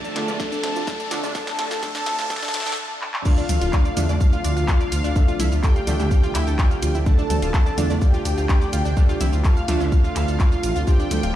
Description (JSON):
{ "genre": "melodic techno", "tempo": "126 BPM", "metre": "4/4", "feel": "straight", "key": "D minor", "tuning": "A4 = 440 Hz", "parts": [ { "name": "mellow synth brass", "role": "melody", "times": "0.0-11.4 s", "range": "F4 to A4", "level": "-29 LUFS", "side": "left 1 dB", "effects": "chorus, sidechain pumping, tape echo" }, { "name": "soft supersaw", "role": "second line", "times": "0.0-11.4 s", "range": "F5 to A5", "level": "-32 LUFS", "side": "equal", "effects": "phaser, cassette tape, sidechain pumping, tape echo" }, { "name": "lush unison pad", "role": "sustained chords", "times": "0.0-11.4 s", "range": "C3 to F4", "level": "-32 LUFS", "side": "equal", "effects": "chorus, vintage 12-bit sampler grit, sidechain pumping" }, { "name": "wide unison pluck", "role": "arpeggios", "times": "0.0-11.3 s", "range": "A3 to F6", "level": "-31 LUFS", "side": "equal", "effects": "sidechain pumping, tape echo" }, { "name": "synth brass stab", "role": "stabs", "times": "0.0-11.4 s", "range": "D3 to F4", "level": "-31 LUFS", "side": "right 4 dB", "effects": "chorus, sidechain pumping, tape echo" }, { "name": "house drum kit", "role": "drums", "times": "0.0-11.3 s", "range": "crash cymbal, handclaps, hi-hat, shaker, snare drum, toms", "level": "-30 LUFS", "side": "equal", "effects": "high-pass filter on snare, small room ambience, high-pass filter on perc, high-pass filter on hats, high-pass filter on toms, high-pass filter on cymbals" }, { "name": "riser", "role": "sound effects", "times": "0.0-2.8 s", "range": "none", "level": "-33 LUFS", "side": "equal", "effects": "none" }, { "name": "dark detuned saw bass", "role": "bass", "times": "0.2-11.3 s", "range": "D1 to E2", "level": "-23 LUFS", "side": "equal", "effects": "sidechain pumping, high-pass filter" }, { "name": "electronic kick drum", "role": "drums", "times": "0.4-11.0 s", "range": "none", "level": "-17 LUFS", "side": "equal", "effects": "small room ambience" } ], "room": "little or no reverb", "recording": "played on a big sound system in a bare room, stone room reverb, high-pass filter", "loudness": "-18 LUFS", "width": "side -12 dB against mid", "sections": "0.0-3.3 A section; 3.3-11.4 B section", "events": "build-up 0.0-3.3; drum fill 0.0-2.8, 3.0; riser 0.0-2.8; filter sweep on synth arpeggio sound 0.0-3.3; break 2.8-3.3; drop 3.3-11.4", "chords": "0.0 Dm7" }